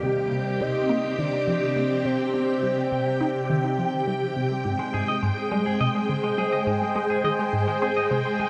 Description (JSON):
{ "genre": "ambient, sequencer-driven space music", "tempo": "104 BPM", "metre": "4/4", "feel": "straight", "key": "unclear", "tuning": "A4 = 441 Hz", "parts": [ { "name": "soft octave-layered synth lead", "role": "melody", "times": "0.0-3.8 s", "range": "G4 to Eb5", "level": "-31 LUFS", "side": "equal", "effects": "chorus, phaser, analog delay" }, { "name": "phased string machine", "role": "sustained chords", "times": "0.0-8.5 s", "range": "C3 to G5", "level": "-27 LUFS", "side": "equal", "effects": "ensemble chorus, phaser" }, { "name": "resonant blip pluck", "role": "riff", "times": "0.0-8.5 s", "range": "Ab2 to Eb4", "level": "-32 LUFS", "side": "equal", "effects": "phaser, lush chorus, analog delay" }, { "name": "semi-hollow electric guitar", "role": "arpeggios", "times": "4.8-8.5 s", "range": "Ab3 to Eb5", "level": "-31 LUFS", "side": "equal", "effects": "analog delay" } ], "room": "wet huge ambient reverb, RT60 7.5 s", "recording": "none", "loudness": "-25 LUFS", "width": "mono", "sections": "0.0-8.5 A section", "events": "none", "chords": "0.0 Cm; 4.6 Ab" }